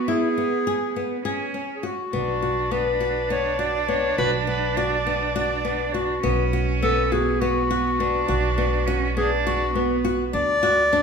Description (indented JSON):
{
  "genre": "contemporary instrumental, chamber music in an uneven meter",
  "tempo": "205 BPM (eighths)",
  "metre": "7/8",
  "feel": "straight",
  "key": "unclear",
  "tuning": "A4 = 440 Hz",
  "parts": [
    { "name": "bright clarinet", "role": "melody", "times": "0.0-11.0 s", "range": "F#4 to D5", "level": "-24 LUFS", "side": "left 1 dB", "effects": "none" },
    { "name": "rich cello", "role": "second line", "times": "0.0-10.3 s", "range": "B3 to D4", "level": "-27 LUFS", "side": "right 6 dB", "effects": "none" },
    { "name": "flamenco guitar", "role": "arpeggios", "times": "0.1-11.0 s", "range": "B3 to G#4", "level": "-26 LUFS", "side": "left 5 dB", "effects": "none" },
    { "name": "upright bass", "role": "bass", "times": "2.1-11.0 s", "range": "B1 to D2", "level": "-28 LUFS", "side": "right 2 dB", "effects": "none" }
  ],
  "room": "wet recital hall reverb, RT60 1.3 s",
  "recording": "recorded in a church or concert hall",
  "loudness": "-20 LUFS",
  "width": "side -6 dB against mid",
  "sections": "0.0-10.3 A section",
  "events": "none",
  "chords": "0.0 C#m7; 2.1 Bm; 10.3 D"
}